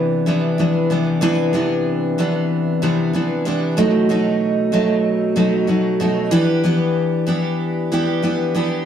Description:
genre	indie pop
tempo	94 BPM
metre	4/4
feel	swing 55% on 16ths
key	unclear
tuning	A4 = 440 Hz
part	picked steel-string acoustic guitar	solo	0.0-8.9 s	B2 to G4	-16 LUFS	equal	lush chorus, warbly pitch drift, slapback echo
room	moderate small room ambience, RT60 0.5 s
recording	none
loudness	-16 LUFS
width	side -9 dB against mid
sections	0.0-8.9 A section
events	none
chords	0.0 Cmaj9; 3.8 B7; 6.3 Em7

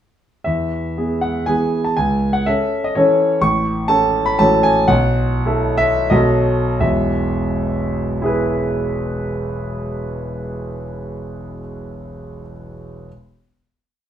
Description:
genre	classical, romantic triple-time dance for piano with dotted rhythms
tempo	81-135 BPM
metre	3/4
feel	rubato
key	E major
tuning	A4 = 438 Hz
part	clear concert grand piano	solo	0.4-13.1 s	E1 to C#6	-16 LUFS	equal	none
room	wet large studio reverb, RT60 0.9 s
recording	heard from further back in the room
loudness	-16 LUFS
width	side -10 dB against mid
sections	0.5-6.8 A section; 6.8-11.0 final chord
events	slowing down 2.7-6.8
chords	0.5 E; 2.0 A/C#; 3.4 A; 4.4 F#m/A; 4.9 B7sus4; 6.1 B7; 6.8 E

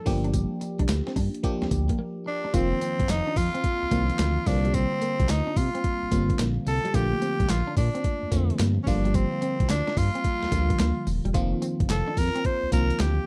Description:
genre	R&B, new jack swing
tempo	109 BPM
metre	4/4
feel	swing 66% on 16ths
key	unclear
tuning	A4 = 440 Hz
part	raspy tenor saxophone	melody	0.0-13.3 s	C4 to C5	-31 LUFS	equal	slapback echo
part	FM electric piano	accompaniment	0.0-13.3 s	D3 to G4	-32 LUFS	equal	chorus
part	electric guitar at the edge of break-up	riff	0.1-13.1 s	G3 to F4	-35 LUFS	equal	subtle chorus
part	smooth gliding synth bass	bass	0.1-13.2 s	Eb1 to C3	-28 LUFS	equal	none
part	boom bap sampler-style drum kit	drums	0.1-13.2 s	handclaps, hi-hat, kick drum, snare drum, tambourine	-30 LUFS	equal	overdrive
room	little or no reverb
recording	dry, close 1970s-style studio recording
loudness	-25 LUFS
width	mono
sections	0.0-2.5 A section; 2.5-13.3 B section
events	break 2.0-2.5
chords	0.1 Gm7; 2.5 F7sus4; 4.5 C9sus4; 6.9 Bbmaj7; 8.9 Gm7; 11.3 F7sus4

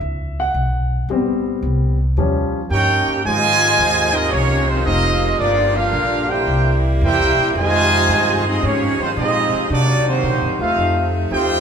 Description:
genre	jazz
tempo	112 BPM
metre	4/4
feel	swing 68% on 8ths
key	Ab major from 3.2 s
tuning	A4 = 441 Hz
part	warm baby grand piano	accompaniment	0.0-2.6 s	F3 to F#5	-21 LUFS	left 3 dB	none
part	upright bass	bass	0.0-11.6 s	F1 to C3	-20 LUFS	equal	none
part	clear trumpet section	melody	2.7-11.6 s	Ab3 to Ab5	-17 LUFS	right 1 dB	none
part	clear trombone section	second line	2.7-11.6 s	C3 to G4	-22 LUFS	right 2 dB	none
part	bright saxophone section	sustained chords	3.3-11.6 s	C3 to Ab4	-25 LUFS	left 2 dB	none
room	wet large studio reverb, RT60 1.5 s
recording	band playing live in one room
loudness	-15 LUFS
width	side -7 dB against mid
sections	0.0-3.2 A section; 3.2-11.6 B section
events	grand piano solo 0.0-3.2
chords	0.0 C#m7; 1.1 Am7; 2.2 D#7; 3.2 Ab69; 5.4 Gm7; 6.5 C7; 7.5 Fm7; 9.7 Cm7b5; 10.8 F7

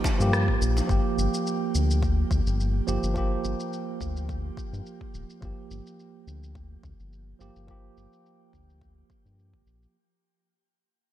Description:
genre	organic downtempo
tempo	106 BPM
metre	4/4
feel	swing 54% on 16ths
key	G minor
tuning	A4 = 440 Hz
part	tine electric piano	accompaniment	0.0-10.0 s	F3 to G4	-30 LUFS	right 4 dB	auto-pan, sidechain pumping, low-pass filter, digital delay, shimmer reverb
part	electronic kick drum	drums	0.0-9.6 s	none	-30 LUFS	left 1 dB	small room ambience
part	djembe	percussion	0.0-0.9 s	none	-36 LUFS	right 1 dB	none
part	electronic shaker and rim click	drums	0.1-9.9 s	none	-33 LUFS	equal	low-pass filter on perc, small room ambience, low-pass filter on snare, gated reverb
part	round analog bass	bass	0.2-9.9 s	D1 to G2	-27 LUFS	left 1 dB	none
room	light reverb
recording	bright 1980s-style digital production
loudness	-24 LUFS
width	side -12 dB against mid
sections	0.0-9.9 A section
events	fade-out 0.0-9.9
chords	0.0 Gm7

